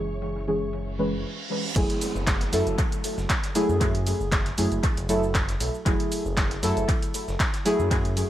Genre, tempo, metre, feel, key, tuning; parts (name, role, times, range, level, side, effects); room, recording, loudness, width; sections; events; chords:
deep house; 117 BPM; 4/4; swing 54% on 16ths; F# minor; A4 = 440 Hz
soft string machine; sustained chords; 0.0-1.2 s; C#4 to G#5; -46 LUFS; right 1 dB; ensemble chorus, sidechain pumping
smooth gliding synth bass; bass; 0.0-8.2 s; F#1 to F#2; -29 LUFS; equal; sidechain pumping
muted studio violin section; texture; 0.0-1.2 s; C#5 to C#6; -45 LUFS; right 1 dB
breakbeat sampler-style drum kit; drums; 0.2-8.3 s; hi-hat, ride cymbal, snare drum; -40 LUFS; right 1 dB
deep mellow chord stab; stabs; 0.5-8.1 s; E3 to B4; -27 LUFS; equal; chorus, sidechain pumping, analog delay
reverse cymbal and downlifter; sound effects; 1.0-5.9 s; -37 LUFS; right 3 dB
electronic kick drum; drums; 1.8-8.0 s; -26 LUFS; equal; overdrive
punchy analog drum machine; drums; 1.8-8.3 s; cabasa, crash cymbal, handclaps, hi-hat; -30 LUFS; equal; analog delay
light reverb, digital ambience; echo-heavy mix; -22 LUFS; side -12 dB against mid
0.0-1.8 A section; 1.8-8.3 B section
reverse cymbal 1.0-1.8; break 1.2-1.8; drop 1.8-8.3
0.0 C#m/F#; 1.8 F#m9